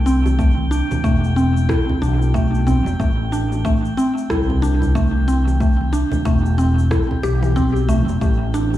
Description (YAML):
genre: organic downtempo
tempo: 92 BPM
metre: 4/4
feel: swing 60% on 16ths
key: A minor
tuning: A4 = 441 Hz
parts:
  - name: mallet-like synth pluck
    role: arpeggios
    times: 0.0-8.7 s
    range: E3 to G4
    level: -20 LUFS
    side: equal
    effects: chorus, analog delay
  - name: fretless electric bass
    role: bass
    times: 0.0-8.8 s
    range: E1 to C2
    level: -18 LUFS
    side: equal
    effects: sidechain pumping
  - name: drifting glass-harmonics texture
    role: texture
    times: 0.0-8.8 s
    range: G5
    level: -32 LUFS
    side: left 2 dB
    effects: chorus, built-in reverb
  - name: electronic shaker and rim click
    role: drums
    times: 0.1-8.8 s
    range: none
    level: -32 LUFS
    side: equal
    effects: overdrive, dub echo
  - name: bongos and congas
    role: percussion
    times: 0.3-8.8 s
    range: none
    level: -27 LUFS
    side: right 3 dB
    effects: none
  - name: electronic kick drum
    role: drums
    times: 0.4-8.4 s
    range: none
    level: -21 LUFS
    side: equal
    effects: overdrive
  - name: airy breathy pad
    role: sustained chords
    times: 8.2-8.8 s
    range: E3 to B3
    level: -32 LUFS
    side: right 2 dB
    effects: chorus, sidechain pumping
room: light reverb, digital ambience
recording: echo-heavy mix, small room reverb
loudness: -15 LUFS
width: side -13 dB against mid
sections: 0.0-8.8 A section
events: none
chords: 0.0 Am7; 8.2 Em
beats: | 0.39 1.04 1.69 2.35 | 3.00 3.65 4.30 4.96 | 5.61 6.26 6.91 7.56 | 8.22